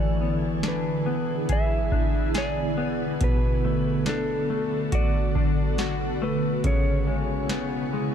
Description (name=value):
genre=dream pop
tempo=70 BPM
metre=4/4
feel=straight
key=unclear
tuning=A4 = 441 Hz
part: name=clean lap steel guitar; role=melody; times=0.0-8.1 s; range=A4 to E5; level=-31 LUFS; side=right 2 dB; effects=ping-pong delay
part: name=ethereal airy pad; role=sustained chords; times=0.0-8.1 s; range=C#3 to A4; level=-28 LUFS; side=right 1 dB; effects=ensemble chorus, built-in reverb, tremolo
part: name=semi-hollow electric guitar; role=arpeggios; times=0.0-8.1 s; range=B2 to G#4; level=-29 LUFS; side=left 5 dB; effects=lush chorus, ping-pong delay
part: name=booming analog drum machine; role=drums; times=0.6-7.7 s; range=hi-hat, kick drum, snare drum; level=-26 LUFS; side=equal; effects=none
room=digital ambience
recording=dark, warm production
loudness=-22 LUFS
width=side -8 dB against mid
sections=0.0-8.1 A section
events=none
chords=0.0 E7; 3.2 Bm7; 6.6 C#m7